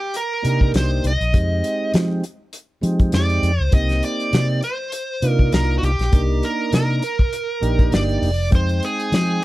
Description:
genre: straight-eighth soul blues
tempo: 100 BPM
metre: 4/4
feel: swing 56% on 16ths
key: C minor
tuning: A4 = 441 Hz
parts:
  - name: smooth overdriven lead guitar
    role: melody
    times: 0.0-9.4 s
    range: F#4 to Eb5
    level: -24 LUFS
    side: right 1 dB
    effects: none
  - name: warm soul drum kit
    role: drums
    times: 0.1-9.4 s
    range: hi-hat, kick drum, snare drum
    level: -19 LUFS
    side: equal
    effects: none
  - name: mellow tonewheel organ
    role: accompaniment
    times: 0.4-9.4 s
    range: Ab3 to G5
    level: -25 LUFS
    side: right 2 dB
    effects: slow rotary speaker
  - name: vintage muted fingered electric bass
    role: bass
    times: 0.4-9.4 s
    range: F1 to F3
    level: -20 LUFS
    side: equal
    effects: none
room: little or no reverb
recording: none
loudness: -17 LUFS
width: side -17 dB against mid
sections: 0.0-9.4 A section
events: none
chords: 0.0 Cm7; 1.3 Fm7; 3.7 Cm7; 8.5 Fm7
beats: 0.14 0.74 | 1.34 1.93 2.53 3.13 | 3.73 4.33 4.93 5.53 | 6.12 6.72 7.32 7.92 | 8.52 9.11

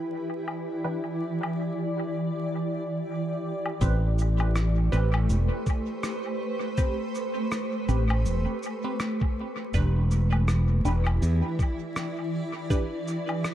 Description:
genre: ambient dub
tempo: 81 BPM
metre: 4/4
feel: swing 58% on 16ths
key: A minor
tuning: A4 = 440 Hz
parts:
  - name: granular cloud pad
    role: sustained chords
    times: 0.0-13.5 s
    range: E3 to D5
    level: -30 LUFS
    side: equal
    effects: built-in reverb
  - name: electronic woodblock, cabasa and rim click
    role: drums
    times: 0.5-13.5 s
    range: none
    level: -37 LUFS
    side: left 1 dB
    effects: low-pass filter on perc, low-pass filter on snare, dub echo
  - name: filtered dub chord stab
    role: stabs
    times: 0.8-12.9 s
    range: E3 to B4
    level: -36 LUFS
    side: right 1 dB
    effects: phaser, dub echo
  - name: modern bright fingered electric bass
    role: bass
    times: 3.8-11.4 s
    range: E1 to E2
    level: -22 LUFS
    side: equal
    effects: tube saturation
  - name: electronic kick drum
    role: drums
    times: 3.8-12.9 s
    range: none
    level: -26 LUFS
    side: equal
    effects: none
room: light reverb, digital ambience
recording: echo-heavy mix, vinyl crackle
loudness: -25 LUFS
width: side -12 dB against mid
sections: 0.0-3.8 A section; 3.8-13.5 B section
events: filter sweep on synth stab 0.0-3.8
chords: 0.0 Em7; 3.8 Am9; 9.7 Em7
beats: 0.11 | 0.85 1.59 2.33 3.07 | 3.81 4.55 5.30 6.04 | 6.78 7.52 8.26 9.00 | 9.74 10.48 11.22 11.96 | 12.70 13.44

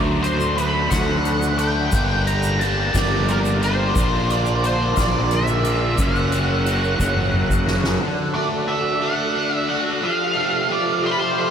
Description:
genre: psychedelic rock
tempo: 59 BPM (dotted quarters)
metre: 6/8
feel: straight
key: unclear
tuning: A4 = 440 Hz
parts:
  - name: ensemble organ-string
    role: sustained chords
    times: 0.0-11.5 s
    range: F#3 to D5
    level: -28 LUFS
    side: right 2 dB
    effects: ensemble chorus
  - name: crunchy overdriven guitar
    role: riff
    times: 0.0-11.5 s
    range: F#2 to G4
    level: -24 LUFS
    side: left 1 dB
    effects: phaser
  - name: fuzz fingered electric bass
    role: bass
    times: 0.0-8.0 s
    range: F#1 to D2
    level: -22 LUFS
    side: equal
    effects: overdrive
  - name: octave-fuzz lead guitar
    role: melody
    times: 0.2-11.5 s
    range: Bb4 to Bb5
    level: -22 LUFS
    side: right 1 dB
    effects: wah, distortion, diffuse ambient delay
  - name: soft-mallet drum kit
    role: drums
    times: 0.2-8.0 s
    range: hi-hat, kick drum, snare drum, toms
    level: -26 LUFS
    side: equal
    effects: none
  - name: egg shaker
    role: percussion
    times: 0.4-7.7 s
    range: none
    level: -38 LUFS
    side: left 8 dB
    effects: none
room: wet huge ambient reverb, RT60 7.5 s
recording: dreamy mix soaked in reverb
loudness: -17 LUFS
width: side -8 dB against mid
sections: 0.0-8.0 A section; 8.0-11.5 B section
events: drum fill 7.0-8.0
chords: 0.0 D; 1.9 Gm; 4.0 Bb; 6.0 F#; 8.0 D; 10.0 Fadd9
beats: 0.92 | 1.93 2.94 | 3.96 4.97 | 5.98 7.00 | 8.01 9.02 | 10.03 11.04

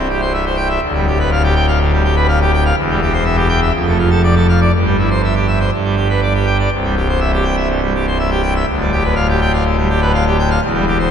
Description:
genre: classical, organ toccata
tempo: 123 BPM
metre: 4/4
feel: straight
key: C major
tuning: A4 = 441 Hz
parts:
  - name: pipe organ, full organ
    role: solo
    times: 0.0-11.1 s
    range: C1 to G5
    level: -12 LUFS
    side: equal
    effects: none
room: wet cathedral reverb, RT60 4.5 s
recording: minimal, uncompressed stereo recording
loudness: -13 LUFS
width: side -8 dB against mid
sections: 0.0-11.1 A section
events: none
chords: 0.0 C; 0.8 G7/D; 2.8 C/E; 3.7 Dm/F; 4.7 C/G; 5.7 G; 6.7 C; 8.7 G7/D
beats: 0.34 | 0.83 1.31 1.80 2.28 | 2.77 3.25 3.74 4.23 | 4.73 5.22 5.72 6.22 | 6.71 7.21 7.70 8.19 | 8.68 9.17 9.65 10.14 | 10.62 11.10

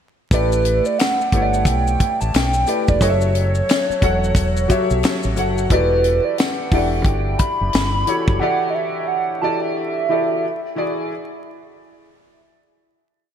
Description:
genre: R&B, neo-soul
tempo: 89 BPM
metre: 4/4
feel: swing 61% on 16ths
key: E dorian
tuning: A4 = 441 Hz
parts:
  - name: hollow clarinet-like synth lead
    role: melody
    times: 0.3-10.6 s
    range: B4 to B5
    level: -21 LUFS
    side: right 3 dB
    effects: chorus, phaser
  - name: clear concert grand piano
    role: accompaniment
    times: 0.3-11.1 s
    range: E3 to F#5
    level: -22 LUFS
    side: left 2 dB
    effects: wide subtle chorus
  - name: deep dub fingered electric bass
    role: bass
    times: 0.3-8.4 s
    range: E1 to B1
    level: -20 LUFS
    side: equal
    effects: none
  - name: tight funk drum kit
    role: drums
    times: 0.3-8.4 s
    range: hi-hat, kick drum, snare drum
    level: -20 LUFS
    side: equal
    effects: none
  - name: maracas and finger snaps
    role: percussion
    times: 0.3-5.7 s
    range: none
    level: -34 LUFS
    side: left 6 dB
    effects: none
room: moderate lush hall reverb, RT60 2.5 s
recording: bright 1980s-style digital production, vinyl crackle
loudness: -16 LUFS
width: side -8 dB against mid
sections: 0.3-11.1 verse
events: none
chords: 0.3 A9sus4; 3.0 F#m7; 5.7 Em11; 10.4 E9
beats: | 0.31 0.99 1.66 2.34 | 3.01 3.68 4.36 5.03 | 5.71 6.38 7.05 7.73 | 8.40 9.08 9.75 10.43

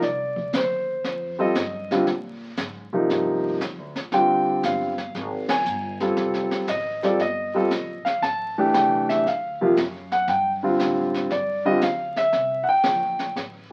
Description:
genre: jazz piano trio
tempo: 117 BPM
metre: 4/4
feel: swing 68% on 8ths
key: F mixolydian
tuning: A4 = 438 Hz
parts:
  - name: warm concert grand piano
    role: melody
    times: 0.0-13.3 s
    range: C3 to A5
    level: -23 LUFS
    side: equal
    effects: none
  - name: upright bass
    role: bass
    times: 0.0-13.7 s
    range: F1 to Bb2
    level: -40 LUFS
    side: equal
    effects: none
  - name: jazz brush drum kit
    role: drums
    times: 0.0-13.7 s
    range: brushed snare drum, hi-hat, kick drum, ride cymbal, snare drum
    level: -33 LUFS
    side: equal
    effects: none
room: moderate studio reverb, RT60 0.6 s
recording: very old 78 rpm record, vinyl crackle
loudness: -23 LUFS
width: mono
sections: 0.0-13.7 A section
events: band accent 5.4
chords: 0.0 Cm; 1.0 F7sus2; 2.1 Bb9; 6.2 F9; 8.2 Am7; 9.3 D(#9); 10.3 G5; 12.3 C7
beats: | 0.02 0.54 1.05 1.56 | 2.08 2.59 3.10 3.61 | 4.13 4.64 5.15 5.67 | 6.18 6.69 7.21 7.72 | 8.23 8.75 9.26 9.77 | 10.29 10.80 11.31 11.83 | 12.34 12.85 13.37

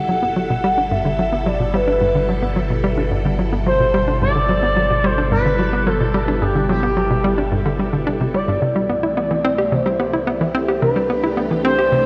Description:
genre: ambient, sequencer-driven space music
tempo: 109 BPM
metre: 4/4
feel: straight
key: G major, C major from 8.6 s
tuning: A4 = 441 Hz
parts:
  - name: expressive portamento lead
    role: melody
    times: 0.0-12.1 s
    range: G4 to F#5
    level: -22 LUFS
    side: equal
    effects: lush chorus, shimmer reverb, tape echo
  - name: phased string machine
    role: sustained chords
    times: 0.0-12.1 s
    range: C2 to A4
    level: -27 LUFS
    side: equal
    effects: ensemble chorus, phaser, shimmer reverb
  - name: hollow square pluck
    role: riff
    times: 0.0-12.1 s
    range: G2 to G4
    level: -23 LUFS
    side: equal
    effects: chorus, tape echo
  - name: warm sub bass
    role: bass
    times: 0.0-8.6 s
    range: G1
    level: -26 LUFS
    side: equal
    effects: none
room: wet plate reverb, RT60 3.3 s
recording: echo-heavy mix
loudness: -18 LUFS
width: mono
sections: 0.0-8.6 A section; 8.6-12.1 B section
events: filter sweep on synth arpeggio sound 0.0-8.6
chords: 0.0 G; 8.6 Cmaj7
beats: 0.36 0.91 1.46 | 2.02 2.56 3.12 3.67 | 4.22 4.77 5.32 5.87 | 6.42 6.97 7.52 8.07 | 8.62 9.17 9.72 10.27 | 10.82 11.37 11.92

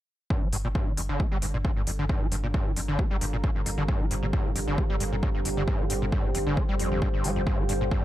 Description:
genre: driving peak-time techno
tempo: 134 BPM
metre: 4/4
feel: straight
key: G minor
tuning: A4 = 440 Hz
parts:
  - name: screaming distorted acid line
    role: riff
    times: 0.3-8.0 s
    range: F2 to Bb3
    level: -31 LUFS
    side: equal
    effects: distortion, analog chorus, sidechain pumping, tape echo
  - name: analog drone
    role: drone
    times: 0.6-8.0 s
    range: G2 to D3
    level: -37 LUFS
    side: left 1 dB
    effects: none
  - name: electronic kick drum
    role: drums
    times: 0.3-8.0 s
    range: none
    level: -27 LUFS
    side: equal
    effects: none
  - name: deep dark ambient pad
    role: texture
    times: 2.4-8.0 s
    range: G4 to Bb5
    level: -34 LUFS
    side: right 2 dB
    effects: chorus, built-in reverb, sidechain pumping
  - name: saturated sub bass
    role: bass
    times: 0.4-7.9 s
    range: G1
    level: -32 LUFS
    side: equal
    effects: sidechain pumping, low-pass filter
  - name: electronic hi-hat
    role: drums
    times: 0.5-7.8 s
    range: none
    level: -34 LUFS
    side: left 1 dB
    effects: none
room: little or no reverb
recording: dry, gritty hardware recording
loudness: -24 LUFS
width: side -14 dB against mid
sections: 0.3-8.0 A section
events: none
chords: 0.3 Gm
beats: | 0.30 0.75 1.20 1.65 | 2.09 2.54 2.99 3.44 | 3.89 4.33 4.78 5.23 | 5.68 6.12 6.57 7.02 | 7.47 7.92

